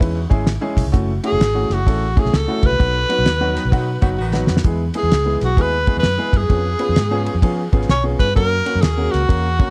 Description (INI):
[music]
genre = uptempo 1960s-style soul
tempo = 129 BPM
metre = 4/4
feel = swing 64% on 8ths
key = unclear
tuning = A4 = 442 Hz
[part]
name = breathy tenor saxophone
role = melody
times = 0.0-9.7 s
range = F#4 to C#5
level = -24 LUFS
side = equal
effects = tape echo
[part]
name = dark upright piano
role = accompaniment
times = 0.0-9.7 s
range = F#3 to B4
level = -26 LUFS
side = equal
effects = none
[part]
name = vintage muted fingered electric bass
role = bass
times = 0.0-9.6 s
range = F#1 to E#3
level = -23 LUFS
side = equal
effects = none
[part]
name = cloth-damped thuddy drum kit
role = drums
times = 0.0-9.7 s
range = hi-hat, kick drum, ride cymbal, snare drum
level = -20 LUFS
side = equal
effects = none
[part]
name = vibraphone with soft mallets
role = second line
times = 1.2-9.7 s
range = F#4 to C#5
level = -32 LUFS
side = equal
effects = none
[part]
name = clear saxophone section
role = second line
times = 3.5-4.5 s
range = D#3 to F#4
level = -32 LUFS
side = equal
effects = none
[sound]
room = light reverb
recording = dark, warm production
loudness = -18 LUFS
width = mono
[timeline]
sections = 0.0-9.7 A section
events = band accent 2.8-4.6; drum fill 4.2-4.6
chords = 0.0 C#m/E; 0.9 F#m7; 2.8 B; 4.6 E; 6.5 C#7/E#; 8.4 F#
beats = 0.01 0.47 | 0.94 1.40 1.87 2.33 | 2.79 3.26 3.72 4.18 | 4.65 5.11 5.58 6.04 | 6.50 6.97 7.43 7.89 | 8.36 8.82 9.29